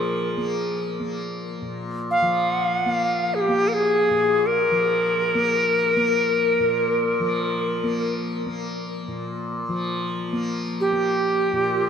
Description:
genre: world meditative, free-time meditation music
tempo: free time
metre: none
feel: none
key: unclear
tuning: A4 = 440 Hz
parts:
  - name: bright reedy Native American-style cedar flute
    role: melody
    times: 0.0-11.9 s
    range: G4 to F5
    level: -21 LUFS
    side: equal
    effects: none
  - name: tanpura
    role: drone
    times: 0.0-11.9 s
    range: Bb2 to Bb3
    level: -27 LUFS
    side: left 2 dB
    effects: none
  - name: glass harmonica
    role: texture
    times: 0.0-0.8, 11.5-11.9 s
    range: F4 to Bb4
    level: -34 LUFS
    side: right 2 dB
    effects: none
room: wet cathedral reverb, RT60 6.3 s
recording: none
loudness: -20 LUFS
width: side -7 dB against mid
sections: 0.0-11.9 A section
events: none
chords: none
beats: free time

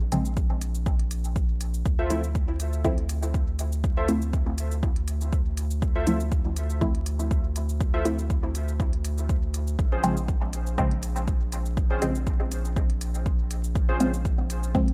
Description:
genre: dub techno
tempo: 121 BPM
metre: 4/4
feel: swing 54% on 16ths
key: unclear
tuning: A4 = 441 Hz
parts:
  - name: soft dub sub bass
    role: bass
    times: 0.0-14.9 s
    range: Bb1 to D2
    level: -30 LUFS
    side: equal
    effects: sidechain pumping
  - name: filtered dub chord stab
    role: stabs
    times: 0.1-14.9 s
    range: Db3 to E4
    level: -31 LUFS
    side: equal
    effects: phaser, dub echo
  - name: electronic hi-hat and shaker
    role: drums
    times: 0.1-14.9 s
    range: none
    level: -43 LUFS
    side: equal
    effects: none
  - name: electronic kick drum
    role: drums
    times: 0.4-14.9 s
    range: none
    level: -28 LUFS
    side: equal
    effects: none
  - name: warbly lo-fi synth keys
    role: riff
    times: 2.0-14.1 s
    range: Db4 to E5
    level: -36 LUFS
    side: equal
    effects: chorus, sidechain pumping, dub echo
room: digital ambience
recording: vinyl crackle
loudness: -26 LUFS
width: mono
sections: 0.0-14.9 A section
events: none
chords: 0.0 N.C.; 1.9 Dm7; 9.8 Bbm7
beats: 0.37 0.86 1.36 | 1.85 2.35 2.85 3.34 | 3.84 4.33 4.83 5.33 | 5.82 6.32 6.81 7.31 | 7.80 8.30 8.80 9.29 | 9.79 10.28 10.78 11.28 | 11.77 12.27 12.76 13.26 | 13.76 14.25 14.75

